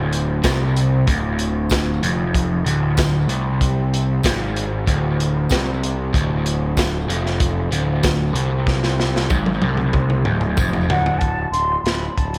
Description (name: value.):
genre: psychedelic rock.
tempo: 95 BPM.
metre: 4/4.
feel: straight.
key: unclear.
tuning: A4 = 440 Hz.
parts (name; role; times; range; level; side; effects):
crunchy overdriven guitar; riff; 0.0-11.2 s; D2 to C3; -23 LUFS; equal; phaser, tape echo.
fuzz picked electric bass; bass; 0.0-12.4 s; D1 to C2; -25 LUFS; equal; overdrive.
crunchy breakbeat drum kit; drums; 0.1-12.4 s; hi-hat, kick drum, snare drum, toms; -24 LUFS; equal; none.
tambourine; percussion; 0.4-10.7 s; none; -40 LUFS; equal; tape echo.
mellow concert flute; melody; 10.9-12.4 s; F#5 to C6; -24 LUFS; equal; tape echo.
room: light reverb, studio ambience.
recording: echo-heavy mix.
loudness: -19 LUFS.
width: mono.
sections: 0.0-11.2 A section; 11.2-12.4 B section.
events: drum fill 8.7-11.2.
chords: 0.0 Dm7b5; 11.2 D7(no3).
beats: 0.44 | 1.07 1.71 2.34 2.97 | 3.61 4.24 4.87 5.51 | 6.14 6.77 7.41 8.04 | 8.68 9.31 9.95 10.58 | 11.22 11.86.